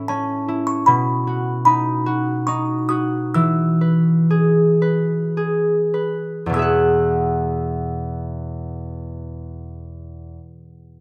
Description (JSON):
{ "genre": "children's music, lullaby", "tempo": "48-77 BPM", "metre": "3/4", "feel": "rubato", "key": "E major", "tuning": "A4 = 440 Hz", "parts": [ { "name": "music box", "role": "melody", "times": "0.0-10.1 s", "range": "A5 to E6", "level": "-23 LUFS", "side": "equal", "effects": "none" }, { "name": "concert harp", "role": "accompaniment", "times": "0.0-10.4 s", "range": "E2 to F#5", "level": "-21 LUFS", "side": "equal", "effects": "none" } ], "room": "light reverb, small room reverb", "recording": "rough home demo mix", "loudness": "-19 LUFS", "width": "mono", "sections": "0.0-6.5 A section; 6.5-10.2 B section", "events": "slowing down 0.9-6.5", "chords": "0.0 A; 0.9 B; 3.3 E" }